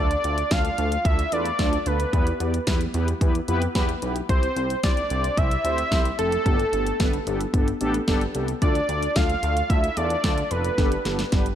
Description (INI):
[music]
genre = synth-pop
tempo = 111 BPM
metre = 4/4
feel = straight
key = unclear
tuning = A4 = 440 Hz
[part]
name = wide unison lead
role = melody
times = 0.0-11.3 s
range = A4 to F5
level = -26 LUFS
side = equal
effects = analog delay
[part]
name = mellow synth brass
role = accompaniment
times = 0.0-11.5 s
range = A3 to D5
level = -28 LUFS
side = equal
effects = chorus, phaser
[part]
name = chorused synth bass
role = bass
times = 0.0-11.5 s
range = F1 to F2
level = -27 LUFS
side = equal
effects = none
[part]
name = pop drum kit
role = drums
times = 0.1-11.6 s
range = hi-hat, kick drum, snare drum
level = -24 LUFS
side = equal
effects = none
[sound]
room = light reverb, digital ambience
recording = none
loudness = -20 LUFS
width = side -10 dB against mid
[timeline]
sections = 0.0-11.6 A section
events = drum fill 10.8-11.6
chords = 0.0 Dm; 2.1 Em; 4.3 C; 6.5 Gadd9; 8.6 Dm; 10.8 Gadd9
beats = 0.51 1.05 1.59 | 2.13 2.67 3.21 3.75 | 4.29 4.83 5.38 5.92 | 6.46 7.00 7.54 8.08 | 8.62 9.16 9.70 10.24 | 10.78 11.32